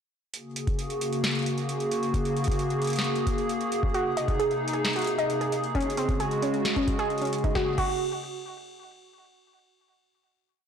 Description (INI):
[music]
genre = IDM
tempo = 133 BPM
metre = 4/4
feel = straight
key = Gb lydian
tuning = A4 = 440 Hz
[part]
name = hollow soft pad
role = sustained chords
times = 0.5-7.8 s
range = C3 to Ab4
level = -28 LUFS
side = equal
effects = chorus
[part]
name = booming analog drum machine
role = drums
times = 0.3-7.9 s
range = crash cymbal, hi-hat, snare drum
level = -34 LUFS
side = equal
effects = overdrive, ping-pong delay
[part]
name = electronic kick drum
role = drums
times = 0.7-7.9 s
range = none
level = -29 LUFS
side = equal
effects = overdrive
[part]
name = warbly dusty pluck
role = arpeggios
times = 3.9-8.0 s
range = C4 to Eb5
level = -28 LUFS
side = right 1 dB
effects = chorus, phaser, digital delay
[sound]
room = moderate digital room reverb, RT60 1.1 s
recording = blown-out, overdriven recording, overdrive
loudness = -25 LUFS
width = side -7 dB against mid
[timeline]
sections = 0.3-7.6 groove; 7.6-9.4 final chord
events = none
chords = 0.3 Gbadd9; 3.9 Abadd9; 5.7 Dbsus4; 7.6 Gbadd9